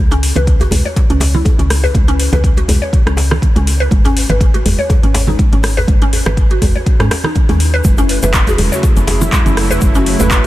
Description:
afro house; 122 BPM; 4/4; swing 54% on 16ths; A4 = 439 Hz
woody FM bass; bass; 0.0-10.5 s; E1 to G#2; -15 LUFS; equal; sidechain pumping
mallet-like synth pluck; arpeggios; 0.1-10.5 s; C#4 to C#5; -20 LUFS; left 1 dB; lush chorus, sidechain pumping, diffuse ambient delay
deep house drum kit; drums; 0.1-10.5 s; handclaps, hi-hat, rim click; -20 LUFS; equal; overdrive, studio reverb
congas; percussion; 0.1-10.3 s; -22 LUFS; right 3 dB
djembe; percussion; 0.1-10.3 s; -22 LUFS; left 1 dB
electronic kick drum; drums; 0.5-10.4 s; -12 LUFS; equal; studio reverb
warm analog pad; sustained chords; 7.8-10.5 s; C#3 to E4; -20 LUFS; right 1 dB; chorus, tremolo, sidechain pumping
egg shaker; percussion; 7.8-10.5 s; -26 LUFS; left 1 dB
breathy large pan pipes; melody; 8.1-10.5 s; F#4 to B4; -24 LUFS; right 2 dB; diffuse ambient delay
studio ambience; -10 LUFS; side -16 dB against mid
0.0-10.5 A section
0.0 N.C.; 3.9 G#5; 7.9 F#m7

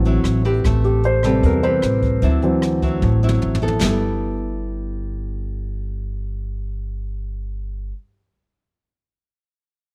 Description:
bossa nova; 151 BPM; 4/4; straight; G major; A4 = 439 Hz
nylon-string guitar; accompaniment; 0.0-8.0 s; A2 to B4; -26 LUFS; equal
warm grand piano; accompaniment; 0.0-3.8 s; C3 to C5; -23 LUFS; equal
upright bass; bass; 0.0-7.9 s; G1 to E2; -24 LUFS; equal
jazz brush drum kit; drums; 0.0-3.9 s; hi-hat, kick drum, rim click, snare drum, splash cymbal, toms; -27 LUFS; equal
little or no reverb; close, detailed microphones; -20 LUFS; mono
0.0-3.8 A section; 3.8-7.0 B section
grand piano solo 0.0-3.8; drum fill 3.0-3.8
0.0 D9 (rootless); 0.6 Am9; 2.2 D9; 3.8 G69

